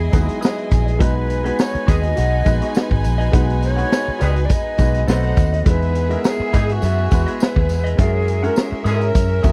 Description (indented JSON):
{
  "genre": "lush 1970s-style soul",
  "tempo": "103 BPM",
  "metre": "4/4",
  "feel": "swing 54% on 16ths",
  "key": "B major",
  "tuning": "A4 = 440 Hz",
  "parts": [
    { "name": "breathy mellow jazz flute", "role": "melody", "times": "0.0-9.5 s", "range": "F#4 to D#5", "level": "-27 LUFS", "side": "equal", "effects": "none" },
    { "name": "warm studio violin section", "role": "second line", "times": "0.0-9.5 s", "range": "B3 to G#5", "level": "-31 LUFS", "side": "equal", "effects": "none" },
    { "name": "clear baby grand piano", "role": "accompaniment", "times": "0.0-9.5 s", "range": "F#3 to C#5", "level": "-28 LUFS", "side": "equal", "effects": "none" },
    { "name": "vintage muted fingered electric bass", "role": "bass", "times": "0.0-9.5 s", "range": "G#1 to G#2", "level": "-21 LUFS", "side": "equal", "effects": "none" },
    { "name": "electric guitar through a small old amp", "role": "riff", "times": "0.1-9.5 s", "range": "E4 to F#5", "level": "-32 LUFS", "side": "equal", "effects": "wah" },
    { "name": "vintage drum kit", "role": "drums", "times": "0.1-9.5 s", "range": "hi-hat, kick drum, snare drum", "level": "-20 LUFS", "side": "equal", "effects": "none" },
    { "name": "tambourine", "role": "percussion", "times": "0.1-9.5 s", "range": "none", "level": "-44 LUFS", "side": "equal", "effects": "none" },
    { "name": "warm horn section", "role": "stabs", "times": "1.9-9.0 s", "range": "D#3 to G#4", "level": "-28 LUFS", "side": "equal", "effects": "none" }
  ],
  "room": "little or no reverb",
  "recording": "dry, close 1970s-style studio recording",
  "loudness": "-18 LUFS",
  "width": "mono",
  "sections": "0.0-9.5 A section",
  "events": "none",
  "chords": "0.0 Emaj7; 1.0 B6; 5.1 B7b9; 5.7 Emaj7; 8.0 F#9"
}